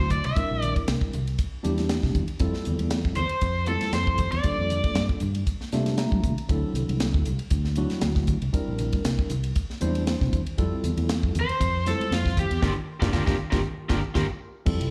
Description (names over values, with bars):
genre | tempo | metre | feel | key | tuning
electric jazz fusion | 118 BPM | 4/4 | swing 54% on 16ths | G dorian | A4 = 440 Hz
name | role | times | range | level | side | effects
biting lead guitar | melody | 0.0-5.1, 11.4-14.2 s | F4 to E5 | -31 LUFS | equal | overdrive, slapback echo
hollow-body jazz guitar | second line | 0.0-5.1, 11.4-14.2 s | F4 to E5 | -39 LUFS | equal | slapback echo
tine electric piano | accompaniment | 0.0-14.9 s | F#3 to Bb5 | -33 LUFS | equal | slapback echo
fretless electric bass | bass | 0.0-14.9 s | G1 to G3 | -30 LUFS | equal | none
tight funk drum kit | drums | 0.1-14.9 s | crash cymbal, hi-hat, kick drum, ride cymbal, snare drum | -30 LUFS | equal | none
congas | percussion | 0.1-14.3 s | none | -38 LUFS | equal | none
room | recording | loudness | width
studio ambience | live gig heard through the venue's PA, club reverb | -26 LUFS | mono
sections
0.0-14.7 A section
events
tine electric piano fill 5.7-6.5, 13.6-14.7; band accent 12.6-14.7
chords
0.4 C9; 2.4 Fmaj9; 4.5 Gm7; 6.5 D9; 8.5 C9; 10.6 Fmaj9; 12.6 Gm7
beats
| 0.36 0.88 1.39 1.90 | 2.41 2.92 3.43 3.94 | 4.45 4.96 5.47 5.98 | 6.49 7.00 7.51 8.03 | 8.54 9.05 9.56 10.07 | 10.58 11.09 11.60 12.11 | 12.62 13.13 13.64 14.15 | 14.66